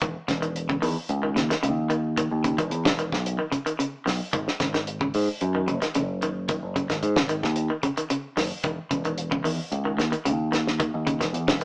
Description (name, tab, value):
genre	afrobeat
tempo	111 BPM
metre	4/4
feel	straight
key	unclear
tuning	A4 = 441 Hz
part	electric guitar at the edge of break-up	arpeggios	0.0-11.6 s	C#3 to D#3	-27 LUFS	equal	none
part	picked electric bass	bass	0.0-11.6 s	E1 to G#2	-27 LUFS	equal	none
part	damped 70s drum kit	drums	0.0-11.6 s	hi-hat, kick drum, snare drum	-27 LUFS	equal	none
room	light reverb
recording	band playing live in one room, small speaker sound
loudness	-23 LUFS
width	side -37 dB against mid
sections	0.0-11.6 A section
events	none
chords	0.0 E5; 4.3 G#5; 8.6 E5